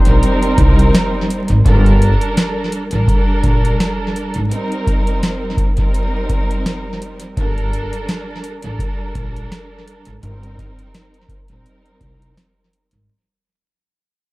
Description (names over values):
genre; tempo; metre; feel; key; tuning
hip hop, boom-bap hip-hop; 84 BPM; 4/4; swing 55% on 16ths; unclear; A4 = 439 Hz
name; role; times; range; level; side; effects
warm analog pad; sustained chords; 0.0-1.6 s; Eb3 to C4; -32 LUFS; equal; none
warm horn section; stabs; 0.0-1.3 s; G3 to C5; -27 LUFS; left 2 dB; high-pass filter, low-pass filter, tape echo
dark studio string section; accompaniment; 0.1-13.0 s; G3 to Bb4; -21 LUFS; right 1 dB; high-pass filter, low-pass filter
upright bass; bass; 0.1-13.1 s; G1 to C2; -16 LUFS; equal; none
booming analog drum machine; drums; 0.1-13.1 s; hi-hat, kick drum, snare drum; -16 LUFS; equal; tape echo
room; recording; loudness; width
small room ambience; echo-heavy mix, vinyl crackle; -14 LUFS; side -20 dB against mid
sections
0.0-1.7 A section; 1.7-13.1 B section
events
fade-out 1.7-13.1; break 4.5-7.4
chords
0.0 Cm7; 1.7 Gmadd9; 4.5 Cm7/G; 7.4 Gmadd9; 10.2 Cm7/G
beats
0.23 0.94 | 1.66 2.37 3.08 3.80 | 4.51 5.23 5.94 6.66 | 7.37 8.08 8.80 9.51 | 10.23 10.94 11.65 12.37